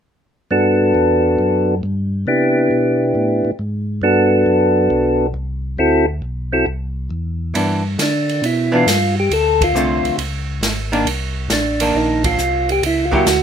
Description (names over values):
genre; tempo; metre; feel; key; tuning
soul jazz organ trio; 136 BPM; 4/4; swing 68% on 8ths; G major; A4 = 442 Hz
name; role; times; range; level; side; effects
percussive tonewheel organ; melody; 0.5-13.4 s; B3 to A4; -15 LUFS; equal; slow rotary speaker
mellow tonewheel organ; bass; 0.5-13.4 s; G#1 to D3; -22 LUFS; equal; slow rotary speaker
archtop guitar, miked and amplified; accompaniment; 7.5-13.3 s; D3 to G4; -18 LUFS; right 1 dB; none
open jazz drum kit; drums; 7.5-13.4 s; hi-hat, kick drum, ride cymbal, snare drum; -22 LUFS; right 2 dB; none
room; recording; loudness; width
light reverb; minimal, uncompressed stereo recording; -15 LUFS; side -8 dB against mid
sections
0.5-7.6 A section; 7.6-13.4 B section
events
band accent 9.5, 12.2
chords
0.5 Gmaj7; 2.3 Cmaj7; 4.0 Gmaj7; 5.8 D9; 7.6 G6; 9.3 Dm7; 10.2 C#sus2; 11.1 Cm9; 12.8 F#7b9